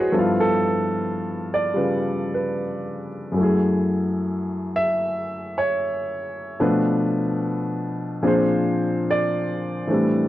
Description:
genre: jazz ballad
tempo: 74 BPM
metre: 4/4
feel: swing 67% on 8ths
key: unclear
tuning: A4 = 442 Hz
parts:
  - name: warm upright piano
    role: solo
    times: 0.0-10.3 s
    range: F#2 to E5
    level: -20 LUFS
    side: equal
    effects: none
room: light reverb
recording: dry, close 1970s-style studio recording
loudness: -20 LUFS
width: side -14 dB against mid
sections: 0.0-10.3 A section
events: none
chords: 0.1 G13; 3.4 F#m7; 6.6 Bm7b5; 8.2 A#9

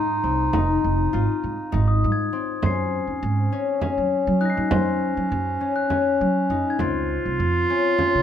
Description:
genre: contemporary instrumental, chamber music in an uneven meter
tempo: 201 BPM (eighths)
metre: 7/8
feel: straight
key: Gb lydian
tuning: A4 = 440 Hz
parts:
  - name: mellow clarinet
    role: second line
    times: 0.0-8.2 s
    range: Db4 to F4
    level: -24 LUFS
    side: right 2 dB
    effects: none
  - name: concert harp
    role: arpeggios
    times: 0.0-8.2 s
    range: C4 to C5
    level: -25 LUFS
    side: left 10 dB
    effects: none
  - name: upright bass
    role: bass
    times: 0.0-8.2 s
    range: F1 to Gb3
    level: -24 LUFS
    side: right 2 dB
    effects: none
  - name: glockenspiel with rubber mallets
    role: texture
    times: 0.0-7.1 s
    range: C6 to C7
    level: -33 LUFS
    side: left 2 dB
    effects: none
  - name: frame drum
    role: percussion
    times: 0.5-8.2 s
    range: none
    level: -28 LUFS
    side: right 4 dB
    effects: none
room: moderate recital hall reverb, RT60 1.5 s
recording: close, detailed microphones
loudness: -20 LUFS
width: side -9 dB against mid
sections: 0.0-2.6 A section; 2.6-8.2 B section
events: none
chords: 0.0 Ab; 2.6 Gbsus2; 6.8 Dbmaj7

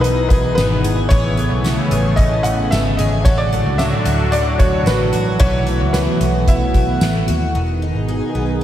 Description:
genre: dream pop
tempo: 112 BPM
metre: 4/4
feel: straight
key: E major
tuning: A4 = 442 Hz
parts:
  - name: felt-muted upright piano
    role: melody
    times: 0.0-7.2 s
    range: B4 to F#5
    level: -22 LUFS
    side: left 1 dB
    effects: tape echo
  - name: warm analog pad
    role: sustained chords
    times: 0.0-8.6 s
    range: A2 to G#4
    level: -20 LUFS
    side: right 1 dB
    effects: chorus
  - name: picked twelve-string acoustic guitar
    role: arpeggios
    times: 0.0-8.6 s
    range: D#3 to G#4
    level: -24 LUFS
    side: left 2 dB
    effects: lush chorus, tape echo
  - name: vintage muted picked electric bass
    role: bass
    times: 0.0-8.6 s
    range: E1 to D#2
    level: -20 LUFS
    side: equal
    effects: none
  - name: soft-mallet drum kit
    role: drums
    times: 0.0-7.4 s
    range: hi-hat, kick drum, snare drum, tambourine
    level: -19 LUFS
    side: equal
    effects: none
room: moderate lush hall reverb, RT60 2.6 s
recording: dreamy mix soaked in reverb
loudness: -14 LUFS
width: side -12 dB against mid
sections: 0.0-7.5 A section; 7.5-8.6 B section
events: none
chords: 0.0 Emaj7; 1.1 Amaj7; 3.3 D/A; 5.4 B7sus4; 7.5 Emaj7

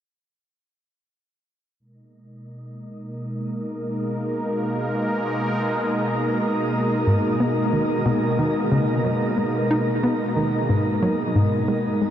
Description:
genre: ambient, sequencer-driven space music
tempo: 91 BPM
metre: 4/4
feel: straight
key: G# minor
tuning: A4 = 440 Hz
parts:
  - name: sweeping resonant pad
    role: sustained chords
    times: 1.8-12.1 s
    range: B2 to A#4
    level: -22 LUFS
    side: equal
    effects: chorus
  - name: wind-like tuned noise texture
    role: texture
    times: 3.0-12.1 s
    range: D#5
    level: -34 LUFS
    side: right 1 dB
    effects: built-in reverb
  - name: hollow square pluck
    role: riff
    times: 7.1-12.1 s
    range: G#2 to D#4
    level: -23 LUFS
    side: left 1 dB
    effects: chorus, analog delay
room: wet shimmer reverb, RT60 7.8 s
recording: dark, warm production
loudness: -20 LUFS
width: side -10 dB against mid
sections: 1.8-12.1 A section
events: fade-in on synth texture 1.8-12.1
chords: 1.8 G#madd9

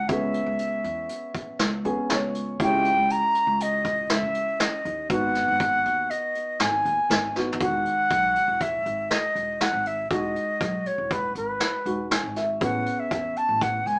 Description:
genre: progressive instrumental, band music in an uneven meter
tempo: 120 BPM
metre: 5/4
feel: straight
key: unclear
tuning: A4 = 440 Hz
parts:
  - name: reedy concert flute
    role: melody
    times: 0.0-14.0 s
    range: B4 to A#5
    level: -24 LUFS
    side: equal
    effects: none
  - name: dark baby grand piano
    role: accompaniment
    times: 0.0-14.0 s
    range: D#3 to G#5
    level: -30 LUFS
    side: equal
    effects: none
  - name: upright bass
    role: bass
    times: 0.0-14.0 s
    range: E1 to C#3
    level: -32 LUFS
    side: equal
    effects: none
  - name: vintage brush drum kit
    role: drums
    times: 0.1-14.0 s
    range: hi-hat, kick drum, snare drum, toms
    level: -27 LUFS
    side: equal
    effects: none
room: moderate studio reverb, RT60 0.5 s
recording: band playing live in one room, small speaker sound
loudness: -22 LUFS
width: side -34 dB against mid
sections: 0.0-7.6 A section; 7.6-14.0 B section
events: grand piano fill 1.6-2.6, 11.9-12.6; drum fill 7.4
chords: 0.1 C#m7; 2.6 D#7b9/C#; 5.1 G#m7; 7.6 Emaj7; 12.6 Amaj7

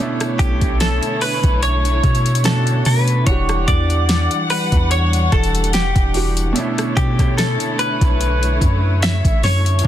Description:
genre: contemporary R&B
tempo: 73 BPM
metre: 4/4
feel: swing 54% on 16ths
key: unclear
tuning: A4 = 440 Hz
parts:
  - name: clear baby grand piano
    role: accompaniment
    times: 0.0-9.9 s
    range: B2 to F#5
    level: -25 LUFS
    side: right 2 dB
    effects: none
  - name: warm studio string section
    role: sustained chords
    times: 0.0-9.9 s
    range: D3 to F#5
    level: -26 LUFS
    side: left 2 dB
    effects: none
  - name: smooth R&B drum kit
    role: drums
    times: 0.2-9.9 s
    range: hi-hat, kick drum, rim click, snare drum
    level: -19 LUFS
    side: equal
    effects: none
  - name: direct-recorded clean electric guitar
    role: melody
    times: 0.4-9.9 s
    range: G4 to E5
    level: -21 LUFS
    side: equal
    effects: lush chorus
  - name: soft 808-style bass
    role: bass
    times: 0.4-9.9 s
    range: E1 to B2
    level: -18 LUFS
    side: equal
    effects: none
room: little or no reverb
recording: dense, heavily limited modern master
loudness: -14 LUFS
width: side -11 dB against mid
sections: 0.0-9.9 A section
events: none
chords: 0.0 Bm11; 3.3 Em9; 6.6 Bm11

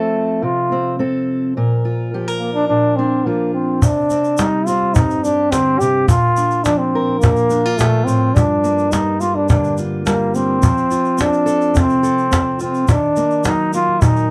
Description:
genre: acoustic folk duo or small band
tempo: 106 BPM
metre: 4/4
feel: straight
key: Bb major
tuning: A4 = 441 Hz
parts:
  - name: clear trombone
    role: melody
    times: 0.0-14.3 s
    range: A3 to G4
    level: -19 LUFS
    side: equal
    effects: none
  - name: fingerpicked steel-string acoustic guitar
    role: accompaniment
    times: 0.0-14.3 s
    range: G2 to Bb4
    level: -22 LUFS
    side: equal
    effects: none
  - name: cajon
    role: percussion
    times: 3.8-14.2 s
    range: none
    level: -18 LUFS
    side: equal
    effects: none
  - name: egg shaker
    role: percussion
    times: 3.8-14.2 s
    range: none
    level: -37 LUFS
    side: equal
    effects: none
room: moderate small room reverb, RT60 0.5 s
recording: dark, warm production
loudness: -16 LUFS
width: mono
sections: 0.0-3.8 A section; 3.8-14.3 B section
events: none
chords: 0.0 F; 1.6 Bb; 3.8 C5; 6.1 Bb; 8.4 Gm7; 10.6 F; 12.9 Ebm

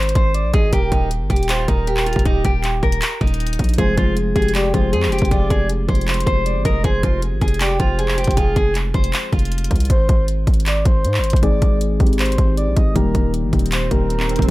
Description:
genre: hip hop, trap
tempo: 157 BPM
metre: 4/4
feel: half-time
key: F dorian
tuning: A4 = 440 Hz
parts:
  - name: picked steel-string acoustic guitar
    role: melody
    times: 0.0-9.9 s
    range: Eb4 to C5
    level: -23 LUFS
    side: equal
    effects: low-pass filter, digital delay
  - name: breathy flute-like synth lead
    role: second line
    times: 0.0-14.5 s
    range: G4 to Eb5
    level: -26 LUFS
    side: right 2 dB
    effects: chorus, digital delay
  - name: distorted 808-style bass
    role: bass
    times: 0.0-14.5 s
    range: Eb1 to Ab2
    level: -20 LUFS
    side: equal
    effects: distortion
  - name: trap drum kit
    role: drums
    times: 0.0-14.5 s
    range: handclaps, hi-hat, kick drum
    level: -19 LUFS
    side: equal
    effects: none
  - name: muted felt-like synth keys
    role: accompaniment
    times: 3.8-14.5 s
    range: Eb3 to Ab4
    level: -24 LUFS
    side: left 2 dB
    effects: chorus, low-pass filter
  - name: swell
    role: sound effects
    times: 13.7-14.5 s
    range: none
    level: -29 LUFS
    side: right 3 dB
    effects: none
room: digital ambience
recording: none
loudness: -15 LUFS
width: side -18 dB against mid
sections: 0.0-14.5 A section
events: swell 13.7-14.5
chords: 0.0 Ab; 0.7 Eb; 3.8 Fm; 9.9 Ab; 13.0 Eb

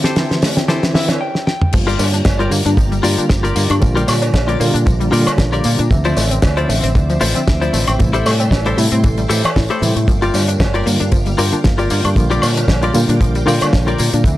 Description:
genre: nu-disco, nu disco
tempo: 115 BPM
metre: 4/4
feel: swing 55% on 16ths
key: G dorian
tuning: A4 = 440 Hz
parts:
  - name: bright reed electric piano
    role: accompaniment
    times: 0.0-14.4 s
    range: C3 to E5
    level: -20 LUFS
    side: right 1 dB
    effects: overdrive, fast tremolo, vintage 12-bit sampler grit, analog delay
  - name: string machine, full ensemble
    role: sustained chords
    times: 0.0-14.4 s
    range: G4 to D6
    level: -29 LUFS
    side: equal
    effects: phaser, ensemble chorus, sidechain pumping
  - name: analog pluck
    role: arpeggios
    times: 0.0-14.3 s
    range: E3 to E4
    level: -24 LUFS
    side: left 2 dB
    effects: chorus, sidechain pumping, analog delay
  - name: direct-recorded clean electric guitar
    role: riff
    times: 0.0-14.1 s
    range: E4 to G5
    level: -22 LUFS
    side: left 3 dB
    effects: lush chorus, analog delay
  - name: damped 70s drum kit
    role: drums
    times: 0.0-14.4 s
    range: crash cymbal, hi-hat, snare drum, tambourine, toms, woodblock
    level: -20 LUFS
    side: left 1 dB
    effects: none
  - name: cowbell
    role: percussion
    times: 0.4-13.7 s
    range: none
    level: -25 LUFS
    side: right 3 dB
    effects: none
  - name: fingered electric bass with an envelope filter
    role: bass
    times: 1.7-14.4 s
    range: G1 to Bb2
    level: -18 LUFS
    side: equal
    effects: tube saturation
  - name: kick drum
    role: drums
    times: 1.7-14.4 s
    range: none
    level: -15 LUFS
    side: equal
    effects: none
room: small room ambience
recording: dry, gritty hardware recording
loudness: -12 LUFS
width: side -15 dB against mid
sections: 0.0-1.7 A section; 1.7-14.4 B section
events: build-up 0.0-1.7; drum fill 0.0-1.2, 1.3-1.7; filter sweep on clean electric guitar 0.0-1.7; clean electric guitar fill 0.7-1.7; stop 1.2-1.7; drop 1.7-14.4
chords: 0.0 Am7; 1.7 Gm7; 3.8 Bb6; 5.9 Dm9; 8.0 Am7; 10.1 Gm7; 12.2 Bb6

